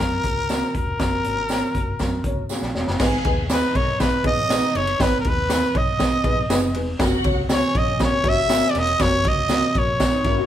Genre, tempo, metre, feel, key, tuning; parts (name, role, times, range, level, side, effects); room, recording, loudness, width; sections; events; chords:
uptempo 1960s-style soul; 120 BPM; 4/4; straight; G# minor; A4 = 441 Hz
growling trumpet; melody; 0.0-10.5 s; A#4 to E5; -22 LUFS; equal
dark upright piano; accompaniment; 0.0-10.4 s; F#3 to B5; -28 LUFS; left 1 dB
vintage muted fingered electric bass; bass; 0.0-10.4 s; E1 to F#2; -28 LUFS; left 1 dB
raw garage drum kit; drums; 0.0-10.4 s; crash cymbal, hi-hat, kick drum, ride cymbal, snare drum; -22 LUFS; right 1 dB
tambourine; percussion; 0.5-10.1 s; -37 LUFS; right 5 dB
warm studio string section; second line; 3.0-8.9 s; C#4 to G#5; -31 LUFS; left 1 dB
electric guitar through a small old amp; riff; 10.1-10.5 s; C#4 to F#4; -26 LUFS; left 9 dB
moderate studio reverb, RT60 0.8 s; band playing live in one room; -18 LUFS; side -11 dB against mid
0.0-3.0 A section; 3.0-10.5 B section
drum fill 2.5-3.0; upright piano fill 6.2-7.0
0.0 F#; 3.0 G#m; 7.0 F#